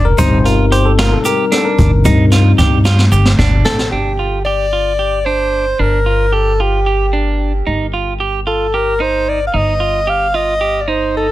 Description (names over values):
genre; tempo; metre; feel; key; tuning
progressive instrumental, band music in an uneven meter; 224 BPM (eighths); 7/8; straight; G minor; A4 = 441 Hz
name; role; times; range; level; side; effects
bell-like tine electric piano; accompaniment; 0.0-2.8 s; G3 to C5; -15 LUFS; left 5 dB; plate reverb
clean electric guitar; arpeggios; 0.0-11.3 s; D4 to G4; -19 LUFS; right 5 dB; none
upright bass; bass; 0.0-11.3 s; F1 to G2; -15 LUFS; equal; none
jazz brush drum kit; drums; 0.2-3.9 s; hi-hat, kick drum, snare drum; -15 LUFS; equal; soft clipping on snare
tube shaker; percussion; 0.2-3.8 s; none; -30 LUFS; left 7 dB; none
mellow soprano saxophone; melody; 3.7-11.3 s; G4 to F5; -16 LUFS; equal; plate reverb, tape echo
room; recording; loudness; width
light reverb; dense, heavily limited modern master; -11 LUFS; side -15 dB against mid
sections
0.0-3.9 A section; 3.9-11.3 B section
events
tine electric piano solo 0.0-3.9; drum fill 2.9-3.9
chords
0.2 Cm/G; 3.9 G7(no3); 7.7 F7sus2/G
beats
| 0.19 0.45 0.72 0.99 1.25 1.52 1.79 | 2.06 2.32 2.59 2.86 3.12 3.39 3.66 | 3.92 4.19 4.46 4.73 4.99 5.26 5.53 | 5.79 6.06 6.33 6.60 6.86 7.13 7.40 | 7.67 7.93 8.20 8.47 8.74 9.00 9.27 | 9.54 9.81 10.07 10.34 10.61 10.88 11.14